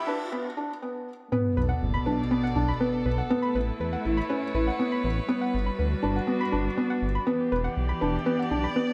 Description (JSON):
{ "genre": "piano and strings electronica", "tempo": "121 BPM", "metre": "4/4", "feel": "straight", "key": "B minor", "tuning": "A4 = 441 Hz", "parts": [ { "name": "dark string quartet", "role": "sustained chords", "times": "0.0-8.9 s", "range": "B2 to F#5", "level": "-34 LUFS", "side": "equal", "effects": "none" }, { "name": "soft round pluck", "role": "arpeggios", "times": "0.0-8.8 s", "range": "B4 to B5", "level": "-36 LUFS", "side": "equal", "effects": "chorus, digital delay" }, { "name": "riser and sub drop", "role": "sound effects", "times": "0.0-3.3 s", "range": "none", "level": "-36 LUFS", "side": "equal", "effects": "none" }, { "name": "felt-muted upright piano", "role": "riff", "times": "0.1-8.9 s", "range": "B3 to E4", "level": "-30 LUFS", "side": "equal", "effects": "digital delay" }, { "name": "dark detuned saw bass", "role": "bass", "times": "1.6-8.7 s", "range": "E1 to E2", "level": "-31 LUFS", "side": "equal", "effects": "none" } ], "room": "moderate echo chamber reverb, RT60 2.1 s", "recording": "high-pass filter", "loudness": "-27 LUFS", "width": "mono", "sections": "0.0-1.3 A section; 1.3-8.9 B section", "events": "build-up 0.0-1.3; riser 0.0-0.3; filter sweep 0.0-1.3; break 0.3-1.3; drop 1.3-8.9; impact 1.3-3.3", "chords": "0.0 Em7; 1.3 Bm7; 3.3 Aadd9; 5.3 Gmaj7; 7.3 Em7" }